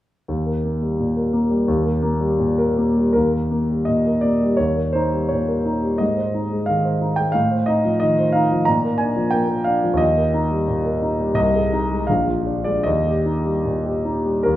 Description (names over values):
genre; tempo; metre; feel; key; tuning
classical, romantic character piece for solo piano; 72-92 BPM; 2/4; rubato; Eb major; A4 = 442 Hz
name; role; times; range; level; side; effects
warm concert grand piano; solo; 0.3-14.6 s; Bb1 to Bb5; -17 LUFS; equal; none
room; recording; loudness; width
wet recital hall reverb, RT60 1.8 s; recorded in a church or concert hall; -17 LUFS; side -14 dB against mid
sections
0.3-3.2 A section; 3.2-14.4 B section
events
none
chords
0.3 Eb; 6.0 Ab; 7.4 F7/A; 8.7 Bb; 10.0 Eb; 11.4 Ab/C; 12.1 Bb7; 12.9 Eb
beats
| 0.28 0.99 | 1.68 2.40 | 3.16 3.87 | 4.58 5.31 | 6.01 6.69 | 7.36 8.03 | 8.68 9.34 | 10.01 10.68 | 11.37 12.09 | 12.85 13.64 | 14.45